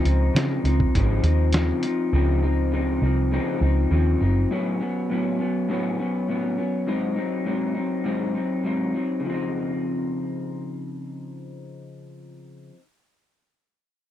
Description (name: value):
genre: indie pop, bedroom pop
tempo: 101 BPM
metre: 4/4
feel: straight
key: Db major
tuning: A4 = 440 Hz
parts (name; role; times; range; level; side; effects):
- electric guitar through a small old amp; accompaniment; 0.0-12.8 s; Ab2 to Eb4; -24 LUFS; left 2 dB; wide subtle chorus, warbly pitch drift
- vintage muted picked electric bass; bass; 0.1-4.4 s; Gb1 to Db3; -20 LUFS; right 1 dB; none
- lo-fi sampler-style drum kit; drums; 0.1-2.0 s; hi-hat, kick drum, snare drum; -24 LUFS; equal; none
room: little or no reverb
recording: dry, close 1970s-style studio recording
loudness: -21 LUFS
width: side -11 dB against mid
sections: 0.0-9.3 A section; 9.3-11.6 B section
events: none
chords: 0.0 Dbmaj9; 4.5 A69; 6.9 Ab7; 9.3 Dbmaj9